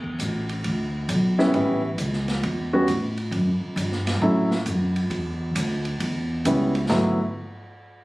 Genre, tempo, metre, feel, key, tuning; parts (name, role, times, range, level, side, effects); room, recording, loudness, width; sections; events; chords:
jazz piano trio; 134 BPM; 4/4; swing 66% on 8ths; D major; A4 = 439 Hz
upright bass; bass; 0.0-7.2 s; A1 to A2; -25 LUFS; equal
open jazz drum kit; drums; 0.0-7.0 s; crash cymbal, hi-hat, kick drum, ride cymbal, snare drum, toms; -30 LUFS; right 1 dB
warm grand piano; melody; 1.4-7.2 s; F#3 to F#4; -21 LUFS; equal
little or no reverb; recorded on a phone in the room, club reverb; -21 LUFS; side -20 dB against mid
0.0-6.9 A section; 6.9-8.0 B section
0.0 E7(no3); 1.5 A7; 3.3 F#m; 5.1 C#m; 6.9 D69